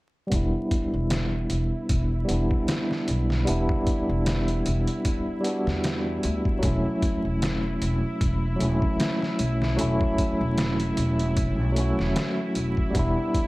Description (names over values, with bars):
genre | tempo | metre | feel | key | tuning
trip hop | 76 BPM | 4/4 | swing 56% on 16ths | E dorian | A4 = 440 Hz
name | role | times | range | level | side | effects
overdriven tine electric piano | accompaniment | 0.3-13.5 s | F#3 to F#4 | -26 LUFS | equal | tremolo, low-pass filter, tape echo
upright bass | bass | 0.3-13.1 s | E1 to E2 | -26 LUFS | equal | tube saturation
trip hop sampler-style drum kit | drums | 0.3-13.5 s | hi-hat, kick drum, snare drum | -28 LUFS | equal | overdrive
bowed-like drone | texture | 0.8-13.5 s | E4 | -37 LUFS | equal | built-in reverb
room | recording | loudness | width
light reverb | vinyl crackle | -22 LUFS | side -20 dB against mid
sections
0.3-13.5 A section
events
filter sweep on tine electric piano 0.3-13.5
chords
0.3 Em7; 6.6 F#m7/E; 12.9 Em7